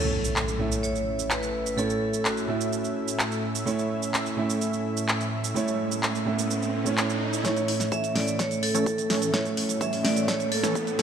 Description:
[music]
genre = EDM, festival progressive house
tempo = 127 BPM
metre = 4/4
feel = straight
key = A major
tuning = A4 = 440 Hz
[part]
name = vibraphone with hard mallets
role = melody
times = 0.0-3.4, 7.4-11.0 s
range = F#4 to E5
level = -30 LUFS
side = equal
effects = tape echo
[part]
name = clear concert grand piano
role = accompaniment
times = 0.0-11.0 s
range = A2 to E5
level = -29 LUFS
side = right 4 dB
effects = sidechain pumping, tape echo
[part]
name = lush unison pad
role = sustained chords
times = 0.3-11.0 s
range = A2 to E5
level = -32 LUFS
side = equal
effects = chorus, sidechain pumping
[part]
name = house drum kit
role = drums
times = 0.0-11.0 s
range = handclaps, hi-hat, shaker, snare drum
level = -29 LUFS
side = right 1 dB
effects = studio reverb
[part]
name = impact and riser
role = sound effects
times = 0.0-11.0 s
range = none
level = -34 LUFS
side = equal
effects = none
[part]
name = supersaw stab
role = riff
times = 7.4-11.0 s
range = E3 to C#5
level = -31 LUFS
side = equal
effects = sidechain pumping, low-pass filter, tape echo
[part]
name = electronic kick drum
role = drums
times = 7.4-10.8 s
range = none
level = -35 LUFS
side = left 1 dB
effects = high-pass filter on kick, studio reverb
[sound]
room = moderate lush hall reverb, RT60 2.0 s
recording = none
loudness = -24 LUFS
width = side -8 dB against mid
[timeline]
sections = 0.0-7.4 A section; 7.4-11.0 B section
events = impact 0.0-1.8; riser 5.2-7.4, 7.4-11.0; build-up 7.4-11.0; drum fill 7.4-11.0; filter sweep on supersaw synth 7.4-11.0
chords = 0.0 A

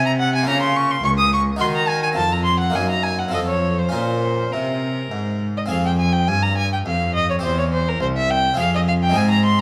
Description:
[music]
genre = classical, baroque-style sonata movement with continuo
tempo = 105 BPM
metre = 3/4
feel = straight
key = Bb minor, F minor from 5.7 s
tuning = A4 = 440 Hz
[part]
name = rich violin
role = melody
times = 0.0-9.6 s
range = Bb4 to Eb6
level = -23 LUFS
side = equal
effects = none
[part]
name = harpsichord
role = accompaniment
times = 0.0-9.6 s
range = C2 to Bb4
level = -28 LUFS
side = equal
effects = none
[part]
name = rich cello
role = bass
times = 0.0-9.6 s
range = C2 to Eb3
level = -24 LUFS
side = equal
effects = none
[sound]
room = wet recital hall reverb, RT60 1.9 s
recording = none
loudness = -20 LUFS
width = mono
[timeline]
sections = 0.0-5.7 A section; 5.7-9.6 A section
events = none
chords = 0.5 Bbm/Db; 1.6 Ebm; 2.2 F5; 2.7 Ebm/Gb; 3.3 F; 3.9 Bbm; 5.7 Fm; 7.4 C/E; 8.6 Fm

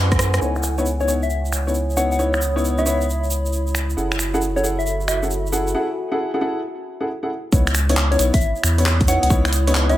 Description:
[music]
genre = UK garage, two-step garage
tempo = 135 BPM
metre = 4/4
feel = swing 66% on 16ths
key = C# minor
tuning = A4 = 440 Hz
[part]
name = saturated sub bass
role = bass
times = 0.0-9.9 s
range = F#1 to F#2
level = -21 LUFS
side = equal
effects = sidechain pumping
[part]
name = warbly tape-like pad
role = texture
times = 0.0-10.0 s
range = E4 to D#6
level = -28 LUFS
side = equal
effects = chorus, built-in reverb, sidechain pumping
[part]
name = electronic kick drum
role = drums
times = 0.1-0.2, 7.5-9.4 s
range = none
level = -18 LUFS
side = equal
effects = none
[part]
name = house drum kit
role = drums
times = 0.1-10.0 s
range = finger snaps, handclaps, hi-hat, rim click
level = -23 LUFS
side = equal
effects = low-pass filter on snare, low-pass filter on hats, low-pass filter on room
[part]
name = egg shaker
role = percussion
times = 0.1-10.0 s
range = none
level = -30 LUFS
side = right 3 dB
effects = none
[part]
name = dark baby grand piano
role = stabs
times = 0.4-10.0 s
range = B3 to F#5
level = -24 LUFS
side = left 1 dB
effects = low-pass filter
[part]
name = soft struck synth lead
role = melody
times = 1.0-5.2, 8.1-10.0 s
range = C#5 to F#5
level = -25 LUFS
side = left 1 dB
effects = chorus
[sound]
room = moderate plate reverb, RT60 1.7 s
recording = none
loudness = -18 LUFS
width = side -14 dB against mid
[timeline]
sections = 0.4-7.5 A section; 7.5-10.0 B section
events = drum fill 0.0-0.4; filter sweep on grand piano 0.4-7.5; break 5.7-7.5; drop 7.5-10.0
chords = 0.4 C#m9; 4.0 F#m9; 7.5 C#m9

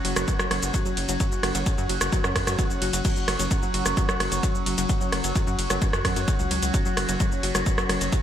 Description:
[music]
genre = driving peak-time techno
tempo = 130 BPM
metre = 4/4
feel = straight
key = unclear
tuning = A4 = 440 Hz
[part]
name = analog pluck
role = riff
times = 0.0-8.2 s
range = F#3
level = -32 LUFS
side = left 1 dB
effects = chorus, overdrive, sidechain pumping, digital delay
[part]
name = tight sequencer bass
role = bass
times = 0.0-8.1 s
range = F#1 to F#2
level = -30 LUFS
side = equal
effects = sidechain pumping
[part]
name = overtone-sweeping drone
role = drone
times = 0.0-8.2 s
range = F#3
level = -33 LUFS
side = right 1 dB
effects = chorus, built-in reverb, phaser, sidechain pumping
[part]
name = techno drum kit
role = drums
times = 0.0-8.2 s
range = crash cymbal, hi-hat, ride cymbal, rim click, shaker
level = -27 LUFS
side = equal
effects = sidechain pumping on hats, sidechain pumping on perc, sidechain pumping on cymbals, gated reverb
[part]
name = airy breathy pad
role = texture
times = 0.0-8.2 s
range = C#4 to F#5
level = -32 LUFS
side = left 1 dB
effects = chorus, sidechain pumping
[part]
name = electronic kick drum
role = drums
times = 0.3-8.2 s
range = none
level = -26 LUFS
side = equal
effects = none
[sound]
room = light reverb, digital ambience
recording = bright 1980s-style digital production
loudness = -22 LUFS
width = side -10 dB against mid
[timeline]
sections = 0.0-8.2 A section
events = none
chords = 0.0 F#5

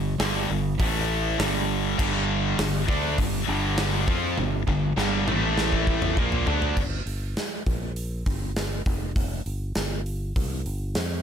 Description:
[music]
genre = hard rock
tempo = 100 BPM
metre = 4/4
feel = straight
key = G minor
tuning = A4 = 440 Hz
[part]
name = heavy high-gain guitar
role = riff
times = 0.0-6.8 s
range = G2 to F4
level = -28 LUFS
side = left 14 dB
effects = distortion
[part]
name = sludgy distorted guitar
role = riff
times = 0.0-6.8 s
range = G2 to F4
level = -28 LUFS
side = right 10 dB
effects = overdrive
[part]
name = fingered electric bass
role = bass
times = 0.0-11.2 s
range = F1 to F2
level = -29 LUFS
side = equal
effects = none
[part]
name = gated 80s drum kit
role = drums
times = 0.2-11.1 s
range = crash cymbal, hi-hat, kick drum, snare drum, toms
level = -28 LUFS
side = equal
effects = none
[part]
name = heavy high-gain guitar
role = riff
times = 2.0-6.8 s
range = G2 to F4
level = -31 LUFS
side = equal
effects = distortion
[sound]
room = studio reverb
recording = none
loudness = -23 LUFS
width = side -8 dB against mid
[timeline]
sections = 0.0-6.8 A section; 6.8-11.2 B section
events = drum fill 4.4-6.8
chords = 0.0 G5; 0.8 A5; 1.4 G5; 5.3 A5; 6.2 Bbmaj7; 6.8 N.C.; 9.5 G7sus4

